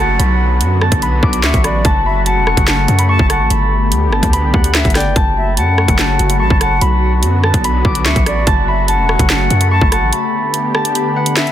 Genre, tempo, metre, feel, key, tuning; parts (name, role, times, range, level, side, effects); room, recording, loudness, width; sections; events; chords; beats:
hip hop, drill; 145 BPM; 4/4; half-time; F# phrygian; A4 = 440 Hz
Celtic harp; melody; 0.0-11.5 s; G4 to D6; -18 LUFS; left 1 dB; low-pass filter, tape echo
silver concert flute; second line; 0.0-11.5 s; D5 to A5; -22 LUFS; left 3 dB; tape echo
warm analog pad; sustained chords; 0.0-11.5 s; C#3 to G4; -21 LUFS; equal; chorus
hard-hitting 808-style bass; bass; 0.0-10.1 s; E1 to F#2; -15 LUFS; equal
downlifter; sound effects; 0.0-1.8 s; -32 LUFS; equal
drill drum kit; drums; 0.2-11.5 s; handclaps, hi-hat, kick drum, rim click, snare drum; -15 LUFS; equal
little or no reverb; dense, heavily limited modern master; -11 LUFS; side -11 dB against mid
0.0-11.5 A section
break 10.1-11.5
0.2 Bm; 1.8 F#m; 3.5 Gadd9; 5.2 F#m; 6.8 Bm; 8.5 F#m; 10.1 Gadd9
| 0.19 0.61 1.02 1.44 | 1.85 2.26 2.68 3.09 | 3.50 3.92 4.33 4.75 | 5.16 5.57 5.99 6.40 | 6.82 7.23 7.64 8.06 | 8.47 8.88 9.30 9.71 | 10.12 10.54 10.95 11.37